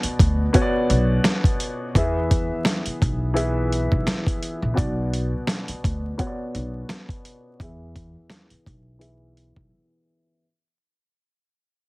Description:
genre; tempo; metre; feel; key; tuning
hip hop, boom-bap hip-hop; 85 BPM; 4/4; swing 56% on 16ths; unclear; A4 = 440 Hz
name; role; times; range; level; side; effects
dark upright piano; accompaniment; 0.0-10.4 s; B2 to E5; -26 LUFS; left 1 dB; high-pass filter, low-pass filter, plate reverb
upright bass; bass; 0.0-9.7 s; A#1 to E2; -24 LUFS; equal; none
dusty soul sampler-style drum kit; drums; 0.0-9.7 s; hi-hat, kick drum, snare drum; -22 LUFS; equal; none
room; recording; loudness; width
light reverb; heavily compressed radio sound, multiband compression, vinyl crackle; -20 LUFS; side -23 dB against mid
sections
0.0-10.4 A section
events
fade-out 0.0-10.4; filter sweep on upright piano 0.0-10.4; break 9.7-10.4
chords
0.0 Bm; 2.0 E; 4.8 Bm; 7.6 E

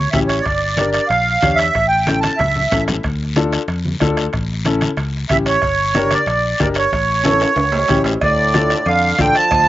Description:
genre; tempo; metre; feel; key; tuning
latin, cumbia; 186 BPM; 4/4; straight; unclear; A4 = 441 Hz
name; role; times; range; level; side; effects
accordion; melody; 0.0-2.8, 5.3-9.7 s; C#5 to A5; -15 LUFS; right 2 dB; light tremolo tuning
fingered electric bass; bass; 0.0-9.7 s; G1 to F2; -22 LUFS; left 1 dB; none
warm upright piano; accompaniment; 0.1-9.4 s; C#4 to C#5; -20 LUFS; left 4 dB; none
bombo; percussion; 0.1-9.7 s; none; -25 LUFS; equal; none
congas; percussion; 0.1-9.7 s; none; -23 LUFS; equal; none
guiro; percussion; 0.1-9.7 s; none; -29 LUFS; left 5 dB; slapback echo
timbales and cowbell; percussion; 0.1-9.7 s; none; -27 LUFS; right 3 dB; slapback echo
clear trombone; second line; 8.2-9.7 s; A2 to F3; -22 LUFS; right 1 dB; slapback echo
room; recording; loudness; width
little or no reverb; recorded outdoors, with no room sound, nothing above 7.7 kHz; -14 LUFS; side -15 dB against mid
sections
0.0-8.2 A section; 8.2-9.7 B section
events
drum fill 2.2-3.0, 7.2-8.2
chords
0.5 Gm; 1.8 A7; 3.0 Dm; 4.3 A7; 5.6 Gm; 6.9 A7; 8.2 Dm

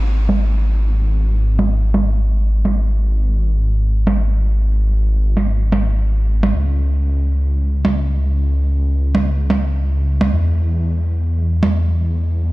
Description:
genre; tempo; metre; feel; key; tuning
melodic techno; 127 BPM; 4/4; straight; unclear; A4 = 440 Hz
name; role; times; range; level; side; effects
dark detuned saw bass; bass; 0.0-12.5 s; G#1 to E2; -15 LUFS; equal; none
percussion blips; drums; 0.3-11.7 s; none; -22 LUFS; right 3 dB; low-pass filter on hats, low-pass filter on snare, low-pass filter on perc, low-pass filter on toms, low-pass filter on room
room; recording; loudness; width
little or no reverb; played on a big sound system in a bare room, stone room reverb; -15 LUFS; side -19 dB against mid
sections
0.0-12.5 A section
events
none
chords
none

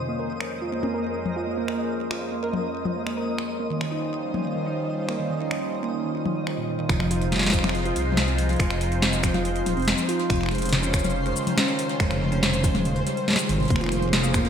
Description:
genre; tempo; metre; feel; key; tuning
IDM; 141 BPM; 4/4; straight; F minor; A4 = 440 Hz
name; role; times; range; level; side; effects
phased analog pad; sustained chords; 0.0-14.5 s; F2 to C5; -30 LUFS; equal; phaser, chorus
harp-like synth pluck; arpeggios; 0.0-14.5 s; Bb2 to Bb4; -27 LUFS; right 1 dB; chorus, ping-pong delay
twinkling granular texture; texture; 0.0-14.5 s; C5 to Eb5; -36 LUFS; equal; built-in reverb
booming analog drum machine; drums; 0.4-14.5 s; finger snaps, hi-hat, shaker, snare drum, toms; -26 LUFS; left 1 dB; gated reverb, digital delay
dark detuned saw bass; bass; 6.9-14.5 s; Eb1 to C2; -26 LUFS; equal; tube saturation
electronic kick drum; drums; 6.9-14.4 s; none; -24 LUFS; equal; none
room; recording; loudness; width
moderate lush hall reverb, RT60 2.3 s; bright 1980s-style digital production; -22 LUFS; side -8 dB against mid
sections
0.0-6.9 A section; 6.9-14.5 B section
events
filter sweep on synth pluck 0.0-6.9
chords
0.1 Bbm9/F; 3.5 Eb13/F; 6.9 Fm7; 10.3 Dbmaj9/F; 13.7 Bbm9/F

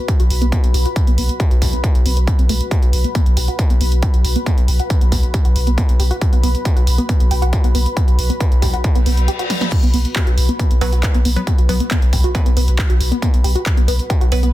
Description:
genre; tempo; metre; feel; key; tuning
driving peak-time techno; 137 BPM; 4/4; straight; unclear; A4 = 440 Hz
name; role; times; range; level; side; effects
deep dark ambient pad; texture; 0.0-14.5 s; F#4 to B5; -27 LUFS; left 2 dB; chorus, built-in reverb, sidechain pumping
tight sequenced synth; riff; 0.1-14.5 s; A3 to B4; -25 LUFS; equal; chorus, phaser, tube saturation, sidechain pumping, ping-pong delay
electronic kick drum; drums; 0.1-14.2 s; none; -16 LUFS; equal; distortion, overdrive
punchy analog drum machine; drums; 0.1-14.5 s; crash cymbal, handclaps, hi-hat, snare drum; -26 LUFS; right 2 dB; none
warm sub bass; bass; 0.2-14.5 s; B1; -17 LUFS; equal; tube saturation, sidechain pumping, low-pass filter
reverse cymbal; sound effects; 9.0-9.7 s; none; -26 LUFS; left 5 dB; none
wavetable chord stab; stabs; 10.8-14.4 s; F#3 to B4; -24 LUFS; right 1 dB; vintage 12-bit sampler grit, sidechain pumping, digital delay
room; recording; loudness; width
light reverb, digital ambience; dense, heavily limited modern master; -13 LUFS; side -15 dB against mid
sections
0.0-14.5 A section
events
filter sweep on synth arpeggio sound 0.0-14.5; reverse cymbal 9.0-9.7; break 9.3-9.7; drum fill 9.5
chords
0.0 B5

